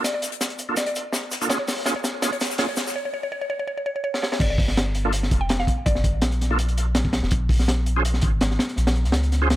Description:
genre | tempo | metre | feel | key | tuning
drum and bass, jungle | 165 BPM | 4/4 | swing 54% on 16ths | unclear | A4 = 444 Hz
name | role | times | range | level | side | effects
mallet-like synth pluck | melody | 0.0-6.4 s | Db5 to G5 | -28 LUFS | left 1 dB | chorus, cassette tape, dub echo
bright tonewheel organ | stabs | 0.0-2.7, 5.0-9.5 s | Bb3 to C5 | -28 LUFS | right 2 dB | chorus vibrato, fast rotary speaker, dub echo
crunchy breakbeat drum kit | drums | 0.0-9.6 s | crash cymbal, hi-hat, kick drum, snare drum | -23 LUFS | equal | high-pass filter on kick, high-pass filter on hats, high-pass filter on cymbals, high-pass filter on snare, high-pass filter on room
loose indie drum kit | drums | 0.1-3.0 s | hi-hat, shaker, snare drum | -31 LUFS | left 2 dB | high-pass filter on hats, high-pass filter on snare, high-pass filter on perc, high-pass filter on room
soft dub sub bass | bass | 4.4-9.6 s | F1 to Db2 | -22 LUFS | equal | none
room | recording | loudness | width
light reverb, small room reverb | none | -20 LUFS | side -15 dB against mid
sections
0.0-4.4 A section; 4.4-9.6 B section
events
build-up 0.0-4.4; drum fill 0.0-3.0, 4.1; break 3.0-4.4; drop 4.4-9.6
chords
0.0 Bbmaj7; 1.5 Bbm7; 4.4 Gm7; 7.3 Bbm7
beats
| 0.04 0.41 0.77 1.14 | 1.50 1.86 2.23 2.59 | 2.95 3.32 3.68 4.04 | 4.41 4.77 5.13 5.50 | 5.86 6.23 6.59 6.95 | 7.32 7.68 8.04 8.41 | 8.77 9.13 9.50

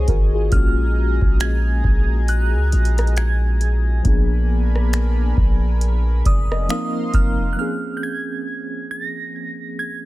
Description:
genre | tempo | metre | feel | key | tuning
contemporary R&B | 68 BPM | 4/4 | swing 58% on 16ths | Bb minor | A4 = 440 Hz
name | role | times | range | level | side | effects
muted felt-like synth keys | accompaniment | 0.0-10.1 s | F3 to Bb5 | -26 LUFS | left 2 dB | chorus, tremolo
chorused pulse-width pad | sustained chords | 0.0-7.6 s | D4 to C6 | -32 LUFS | equal | sidechain pumping
long sustained 808-style bass | bass | 0.0-7.6 s | F1 to Db2 | -18 LUFS | equal | none
downlifter | sound effects | 0.0-0.5 s | none | barely audible | none | none
booming analog drum machine | drums | 0.1-7.4 s | finger snaps, hi-hat, kick drum, rim click | -18 LUFS | equal | none
glassy synth bell | melody | 0.5-10.1 s | Eb6 to Bb6 | -28 LUFS | right 3 dB | chorus
room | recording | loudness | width
digital ambience | none | -17 LUFS | side -17 dB against mid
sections
0.0-7.6 A section; 7.6-10.1 B section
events
synth keys fill 5.8-7.6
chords
0.0 Ab9sus4; 0.5 Gbmaj9/Bb; 4.0 Bb7b9; 6.7 F7sus4; 7.6 Bbm9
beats
| 0.52 1.40 2.28 3.17 | 4.05 4.93 5.81 6.70 | 7.58 8.46 9.34

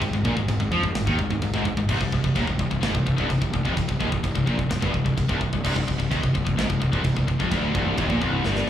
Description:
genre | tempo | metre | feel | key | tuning
heavy metal | 128 BPM | 4/4 | straight | C minor | A4 = 439 Hz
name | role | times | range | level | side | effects
distorted electric guitar | riff | 0.0-8.7 s | C2 to F3 | -29 LUFS | right 6 dB | distortion, slapback echo
overdriven electric guitar | riff | 0.0-8.7 s | C2 to F3 | -28 LUFS | equal | slapback echo
scooped high-gain guitar | riff | 0.0-8.7 s | C2 to F3 | -27 LUFS | left 6 dB | distortion, slapback echo
fuzz fingered electric bass | bass | 0.0-8.7 s | C1 to F2 | -27 LUFS | equal | overdrive
tight metal drum kit | drums | 0.0-8.7 s | china cymbal, crash cymbal, kick drum, snare drum | -29 LUFS | equal | none
room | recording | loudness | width
little or no reverb | live gig heard through the venue's PA, club reverb | -21 LUFS | side -10 dB against mid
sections
0.0-8.7 A section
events
drum fill 8.4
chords
0.0 Ab5; 1.9 Cm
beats
| 0.01 0.48 0.95 1.42 | 1.89 2.36 2.83 3.29 | 3.76 4.23 4.70 5.17 | 5.64 6.11 6.58 7.04 | 7.51 7.98 8.45

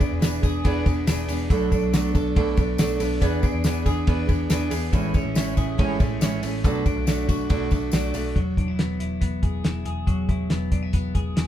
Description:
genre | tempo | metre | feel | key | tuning
jangly indie pop | 140 BPM | 4/4 | straight | unclear | A4 = 440 Hz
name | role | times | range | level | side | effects
fingerpicked steel-string acoustic guitar | accompaniment | 0.0-8.4 s | A2 to A4 | -26 LUFS | right 4 dB | none
twelve-string electric guitar | arpeggios | 0.0-11.5 s | E3 to A4 | -29 LUFS | left 3 dB | none
cloth-damped thuddy drum kit | drums | 0.0-11.5 s | hi-hat, kick drum, ride cymbal, snare drum | -23 LUFS | equal | none
tambourine | percussion | 0.0-8.2 s | none | -40 LUFS | left 6 dB | none
vintage muted picked electric bass | bass | 0.1-11.5 s | E1 to E2 | -28 LUFS | left 1 dB | none
room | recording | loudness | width
moderate studio reverb, RT60 0.5 s | band playing live in one room | -20 LUFS | side -11 dB against mid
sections
0.0-8.4 A section; 8.4-11.5 B section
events
none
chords
0.0 E7; 1.5 Bm7; 3.2 E7; 4.9 Amaj7; 6.6 Bm7; 8.4 Eadd9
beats
0.22 0.65 1.07 | 1.50 1.93 2.36 2.79 | 3.22 3.65 4.07 4.50 | 4.93 5.36 5.79 6.21 | 6.64 7.07 7.50 7.93 | 8.36 8.79 9.22 9.65 | 10.08 10.51 10.94 11.37

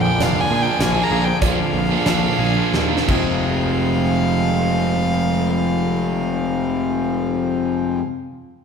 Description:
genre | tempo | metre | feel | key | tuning
post-rock | 82-102 BPM | 3/4 | straight | F dorian | A4 = 440 Hz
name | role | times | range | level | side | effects
warm violin | melody | 0.0-8.0 s | F5 to Bb5 | -25 LUFS | right 1 dB | none
pedal harmonium | sustained chords | 0.0-8.0 s | F3 to G5 | -31 LUFS | left 1 dB | none
felt-muted upright piano | arpeggios | 0.0-3.8 s | F4 to F5 | -31 LUFS | right 6 dB | none
twangy electric guitar | arpeggios | 0.0-8.1 s | F2 to Ab4 | -28 LUFS | left 2 dB | none
crunchy overdriven guitar | riff | 0.0-8.1 s | F2 to Ab4 | -23 LUFS | right 7 dB | phaser
distorted electric guitar | riff | 0.0-8.0 s | F2 to F4 | -24 LUFS | left 7 dB | distortion
fuzz picked electric bass | bass | 0.0-8.0 s | F1 to Bb2 | -23 LUFS | left 1 dB | overdrive
huge arena drum kit | drums | 0.2-3.3 s | crash cymbal, hi-hat, kick drum, snare drum | -24 LUFS | equal | none
room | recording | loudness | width
wet recital hall reverb, RT60 1.4 s | recorded in a church or concert hall | -17 LUFS | side -6 dB against mid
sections
0.0-3.4 A section; 3.4-7.8 B section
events
slowing down 0.0-3.4; drum fill 2.7-3.4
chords
0.0 Bb7; 3.1 Fm7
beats
0.21 0.81 | 1.42 2.06 2.74 | 3.45 4.18 4.91 | 5.64 6.37 7.10

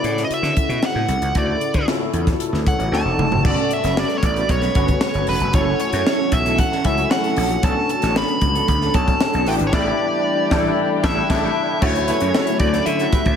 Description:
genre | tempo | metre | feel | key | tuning
polished 1980s jazz-funk pop | 115 BPM | 4/4 | straight | D major | A4 = 440 Hz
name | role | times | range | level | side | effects
nasal lead guitar with a parked wah | melody | 0.0-13.4 s | B4 to B5 | -22 LUFS | right 1 dB | overdrive, slapback echo
barky tine electric piano | accompaniment | 0.0-13.4 s | C#3 to G5 | -23 LUFS | left 4 dB | overdrive, ensemble chorus, slapback echo
gritty slap bass | bass | 0.0-13.4 s | E1 to D3 | -23 LUFS | equal | overdrive
crisp fusion drum kit | drums | 0.0-13.4 s | crash cymbal, hi-hat, kick drum, snare drum, toms | -22 LUFS | equal | none
warm studio string section | sustained chords | 3.4-13.4 s | C#3 to G4 | -30 LUFS | right 2 dB | none
electric guitar at the edge of break-up | riff | 3.4-13.3 s | B3 to C#5 | -28 LUFS | right 6 dB | lush chorus, slapback echo
warm horn section | second line | 11.8-13.2 s | A3 to C#5 | -29 LUFS | right 3 dB | slapback echo
room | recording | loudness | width
moderate lush hall reverb, RT60 1.9 s | big arena sound | -16 LUFS | side -8 dB against mid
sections
0.0-3.4 A section; 3.4-11.8 B section; 11.8-13.4 C section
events
tine electric piano fill 2.7-3.4; drum fill 2.9-3.4; band accent 9.7-11.8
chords
0.0 Dmaj9; 2.9 D7b9; 3.4 Gmaj9#11; 5.5 F#m7; 7.6 Bm7; 9.5 A7sus4; 11.8 Dmaj9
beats
0.31 0.83 | 1.35 1.88 2.40 2.93 | 3.45 3.97 4.50 5.02 | 5.54 6.07 6.59 7.11 | 7.64 8.16 8.68 9.21 | 9.73 10.25 10.78 11.30 | 11.82 12.34 12.87

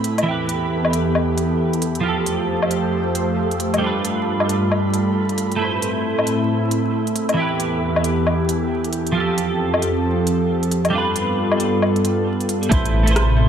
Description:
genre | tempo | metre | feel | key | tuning
future garage | 135 BPM | 4/4 | swing 62% on 16ths | A minor | A4 = 441 Hz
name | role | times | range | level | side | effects
twelve-string electric guitar | accompaniment | 0.0-13.5 s | E3 to C5 | -22 LUFS | right 3 dB | ensemble chorus, sidechain pumping, ping-pong delay
airy breathy pad | sustained chords | 0.0-13.5 s | E2 to B5 | -21 LUFS | equal | chorus, sidechain pumping
organic electronic drum kit | drums | 0.0-13.3 s | hi-hat, rim click, woodblock | -23 LUFS | left 2 dB | overdrive, studio reverb
wind-like tuned noise texture | texture | 0.0-12.7 s | A4 | -30 LUFS | right 5 dB | built-in reverb
dark detuned saw bass | bass | 12.7-13.5 s | A1 | -16 LUFS | equal | sidechain pumping
electronic kick drum | drums | 12.7-12.8 s | none | -18 LUFS | equal | overdrive, studio reverb
room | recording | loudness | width
moderate lush hall reverb, RT60 2.4 s | vinyl crackle | -17 LUFS | side -8 dB against mid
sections
0.0-12.7 A section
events
none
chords
0.3 Em; 2.0 Fadd9; 3.8 G7; 5.6 Amadd9; 7.4 Em; 9.2 Fadd9; 10.9 G7; 12.7 Amadd9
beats
| 0.27 0.71 1.16 1.60 | 2.05 2.49 2.94 3.38 | 3.83 4.27 4.71 5.16 | 5.60 6.05 6.49 6.94 | 7.38 7.83 8.27 8.71 | 9.16 9.60 10.05 10.49 | 10.94 11.38 11.82 12.27 | 12.71 13.16

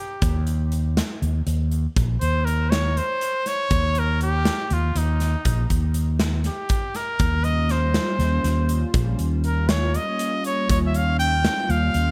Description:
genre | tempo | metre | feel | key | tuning
progressive instrumental, band music in an uneven meter | 241 BPM (eighths) | 7/8 | straight | Eb mixolydian | A4 = 440 Hz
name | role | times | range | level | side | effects
clear trumpet | melody | 0.0-12.1 s | Eb4 to G5 | -28 LUFS | equal | digital delay
fretless electric bass | bass | 0.2-12.1 s | Bb1 to Eb2 | -24 LUFS | equal | none
big rock drum kit | drums | 0.2-12.1 s | hi-hat, kick drum, snare drum | -28 LUFS | equal | none
hollow soft pad | accompaniment | 7.2-12.1 s | G3 to F4 | -30 LUFS | equal | chorus
room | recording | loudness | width
light reverb | none | -22 LUFS | mono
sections
0.0-12.1 A section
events
trumpet solo 0.0-12.1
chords
0.0 Eb7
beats
| 0.23 0.48 0.73 0.98 1.23 1.48 1.72 | 1.97 2.22 2.47 2.72 2.97 3.22 3.47 | 3.72 3.97 4.22 4.46 4.71 4.96 5.21 | 5.46 5.71 5.96 6.21 6.46 6.71 6.96 | 7.21 7.45 7.70 7.95 8.20 8.45 8.70 | 8.95 9.20 9.45 9.70 9.95 10.20 10.45 | 10.69 10.94 11.19 11.44 11.69 11.94

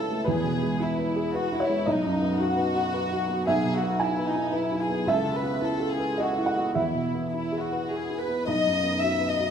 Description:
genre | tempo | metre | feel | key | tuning
neoclassical piano and strings | 111 BPM | 3/4 | rubato | E major | A4 = 440 Hz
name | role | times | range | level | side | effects
warm chamber violin section | melody | 0.0-9.5 s | D#4 to E5 | -28 LUFS | left 2 dB | none
felt-muted upright piano | accompaniment | 0.0-9.5 s | B1 to G#5 | -25 LUFS | right 1 dB | none
room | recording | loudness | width
wet recital hall reverb, RT60 1.6 s | recorded in a church or concert hall | -24 LUFS | side -8 dB against mid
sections
0.0-8.5 A section; 8.5-9.5 A section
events
none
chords
0.3 E; 1.9 B; 3.5 E/B; 5.1 Aadd9/C#; 6.8 E; 8.5 B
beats
| 0.26 0.79 1.33 | 1.86 2.40 2.94 | 3.47 4.01 4.55 | 5.09 5.63 6.19 | 6.76 7.33 7.90 | 8.46 9.01

